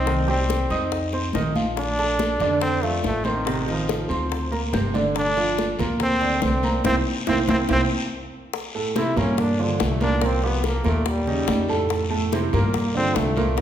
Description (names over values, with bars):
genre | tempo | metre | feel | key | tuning
Afro-Cuban jazz | 142 BPM | 4/4 | straight | unclear | A4 = 439 Hz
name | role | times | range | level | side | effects
brilliant trombone | melody | 0.0-13.6 s | Eb3 to E4 | -25 LUFS | equal | none
warm concert grand piano | accompaniment | 0.0-13.6 s | A2 to Eb6 | -24 LUFS | right 2 dB | none
upright bass | bass | 0.0-13.6 s | G1 to G2 | -26 LUFS | left 1 dB | none
bongos | percussion | 0.1-13.6 s | none | -32 LUFS | left 7 dB | none
congas | percussion | 0.1-13.6 s | none | -30 LUFS | equal | none
guiro | percussion | 0.1-13.6 s | none | -36 LUFS | left 4 dB | none
room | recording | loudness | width
wet recital hall reverb, RT60 1.5 s | recorded in a church or concert hall | -20 LUFS | side -10 dB against mid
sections
0.0-8.5 A section; 8.5-13.6 B section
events
band accent 6.8-8.5; trombone solo 8.5-13.6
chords
0.1 Cm; 0.9 F5; 1.8 Bbmaj9; 3.5 Adim; 4.3 Gmadd11; 5.2 Gm7; 6.8 C7; 8.5 C13b9; 9.4 Gm7; 10.2 C7sus4; 11.1 Eb9; 11.9 Fmaj7; 12.7 Gm9